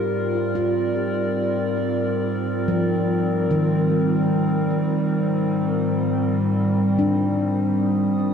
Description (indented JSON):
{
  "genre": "ambient",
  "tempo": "free time",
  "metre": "none",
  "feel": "none",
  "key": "unclear",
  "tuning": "A4 = 440 Hz",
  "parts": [
    { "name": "warbly tape-like pad", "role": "sustained chords", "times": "0.0-8.3 s", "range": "Ab2 to Eb6", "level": "-21 LUFS", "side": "equal", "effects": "chorus, built-in reverb, shimmer reverb" },
    { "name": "handpan", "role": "arpeggios", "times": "0.0-8.3 s", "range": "Eb3 to G4", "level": "-24 LUFS", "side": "equal", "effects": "ping-pong delay, shimmer reverb" }
  ],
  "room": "wet cathedral reverb, RT60 5.3 s",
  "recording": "none",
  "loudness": "-19 LUFS",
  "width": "side -7 dB against mid",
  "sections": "0.0-8.3 A section",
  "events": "none",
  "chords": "0.0 Ebmaj9/Ab",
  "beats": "free time"
}